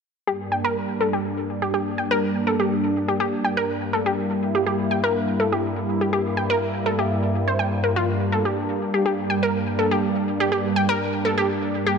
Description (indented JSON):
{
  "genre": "house",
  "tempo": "123 BPM",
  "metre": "4/4",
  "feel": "straight",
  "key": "G dorian",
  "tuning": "A4 = 442 Hz",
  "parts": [
    { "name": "lush unison pad", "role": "sustained chords", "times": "0.3-12.0 s", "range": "G2 to E4", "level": "-23 LUFS", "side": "equal", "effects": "chorus, phaser" },
    { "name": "wide unison pluck", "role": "arpeggios", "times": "0.3-11.9 s", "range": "F4 to G5", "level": "-23 LUFS", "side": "moving between left 3 dB and right 3 dB", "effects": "auto-pan, tape echo" }
  ],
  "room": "moderate lush hall reverb, RT60 2.6 s",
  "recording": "none",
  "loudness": "-20 LUFS",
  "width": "side -6 dB against mid",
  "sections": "0.3-12.0 A section",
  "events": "none",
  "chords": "0.3 Gm; 8.1 Bb/G"
}